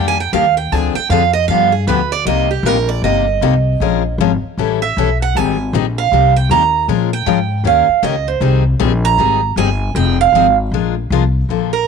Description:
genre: acoustic string swing (jazz manouche).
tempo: 156 BPM.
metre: 4/4.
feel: swing 61% on 8ths.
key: unclear.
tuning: A4 = 439 Hz.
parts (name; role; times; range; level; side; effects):
picked steel-string acoustic guitar; melody; 0.0-11.9 s; G4 to Bb5; -15 LUFS; right 12 dB; none.
picked steel-string acoustic guitar; accompaniment; 0.0-11.7 s; C3 to Bb4; -18 LUFS; left 16 dB; none.
upright bass; bass; 0.0-11.9 s; F1 to Bb2; -17 LUFS; left 1 dB; none.
room: small room ambience.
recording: 1960s-style stereo with parts hard left and right.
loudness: -12 LUFS.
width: side -6 dB against mid.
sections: 0.0-11.5 A section.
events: steel-string acoustic guitar solo 0.0-11.5.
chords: 0.0 Ebmaj7; 0.7 Dm7b5; 1.5 G7; 2.3 Cm7; 3.8 Bbm7; 4.6 A9; 5.3 Abmaj7; 6.1 Cm7; 6.9 Bbm7; 7.7 Eb7; 8.4 Abmaj7; 10.0 Fm7; 10.7 Bb7.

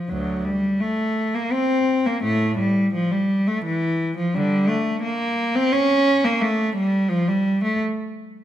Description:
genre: classical, baroque-style suite movement for unaccompanied cello.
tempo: 86 BPM.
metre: 3/4.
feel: rubato.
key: unclear.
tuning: A4 = 440 Hz.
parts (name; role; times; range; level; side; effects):
rich cello; solo; 0.0-7.8 s; D2 to C#4; -19 LUFS; equal; none.
room: moderate recital hall reverb, RT60 1.6 s.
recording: none.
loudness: -19 LUFS.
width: side -11 dB against mid.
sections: 0.1-8.4 A section.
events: none.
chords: none.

